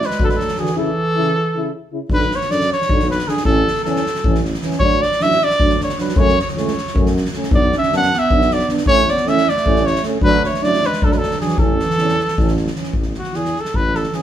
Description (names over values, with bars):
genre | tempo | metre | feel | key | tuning
balkan folk, Balkan brass band | 310 BPM (eighths) | 7/8 | straight | A major | A4 = 439 Hz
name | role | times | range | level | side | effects
warm cornet | melody | 0.0-14.2 s | F#4 to F#5 | -18 LUFS | right 1 dB | none
mellow clarinet | second line | 0.0-1.7, 7.5-12.6 s | E3 to D4 | -24 LUFS | right 3 dB | none
soft-mallet drum kit | percussion | 0.0-14.2 s | kick drum, snare drum | -20 LUFS | left 1 dB | none
dark euphonium | accompaniment | 0.2-14.2 s | C#3 to B3 | -26 LUFS | right 5 dB | none
mellow French horn | accompaniment | 0.2-14.2 s | C#4 to F#4 | -24 LUFS | equal | none
warm tuba | bass | 0.2-14.1 s | A1 to F#2 | -23 LUFS | equal | none
room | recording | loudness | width
wet studio reverb, RT60 0.6 s | band playing live in one room | -15 LUFS | side -10 dB against mid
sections
0.0-2.1 A section; 2.1-13.0 A section; 13.0-14.2 B section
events
cornet solo 13.0-14.2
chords
0.0 A; 2.1 Bm; 3.5 A; 4.8 D; 6.2 F#m; 7.5 Bm; 8.9 A; 10.2 D; 11.6 A; 13.0 A5